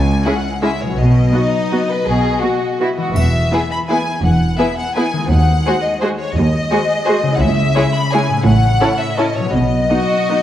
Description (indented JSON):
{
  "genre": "classical, orchestral ballroom waltz",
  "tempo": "168 BPM",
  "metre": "3/4",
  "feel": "uneven beats, rubato",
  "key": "E major",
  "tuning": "A4 = 440 Hz",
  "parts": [
    { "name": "rich symphonic violin section", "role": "melody", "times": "0.0-10.4 s", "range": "B#4 to B5", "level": "-20 LUFS", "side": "left 2 dB", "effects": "none" },
    { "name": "concert harp", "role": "arpeggios", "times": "0.0-10.4 s", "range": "A2 to C#5", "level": "-22 LUFS", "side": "left 3 dB", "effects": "none" },
    { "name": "rich symphonic cello section", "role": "bass", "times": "0.0-9.8 s", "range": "C#2 to B2", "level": "-19 LUFS", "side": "right 1 dB", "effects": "none" },
    { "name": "rich symphonic double bass section", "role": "bass", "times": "0.0-9.8 s", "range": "E1 to D#2", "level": "-18 LUFS", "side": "right 1 dB", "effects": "none" },
    { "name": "rich chamber violin section", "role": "second line", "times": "0.3-10.4 s", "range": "D#4 to C#5", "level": "-21 LUFS", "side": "left 2 dB", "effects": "none" },
    { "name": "clear symphonic viola section", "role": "accompaniment", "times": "0.3-10.4 s", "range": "G#3 to F#4", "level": "-21 LUFS", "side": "right 1 dB", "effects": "none" },
    { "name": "triangle", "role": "percussion", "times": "3.2-3.9 s", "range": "none", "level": "-37 LUFS", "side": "equal", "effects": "none" }
  ],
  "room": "wet scoring stage reverb, RT60 1.6 s",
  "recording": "vinyl crackle",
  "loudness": "-13 LUFS",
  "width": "side -11 dB against mid",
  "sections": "0.0-10.4 A section",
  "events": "none",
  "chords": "0.0 C#m; 1.0 B; 3.2 E; 5.3 G#7/D#; 7.4 C#m; 8.5 A; 9.5 B"
}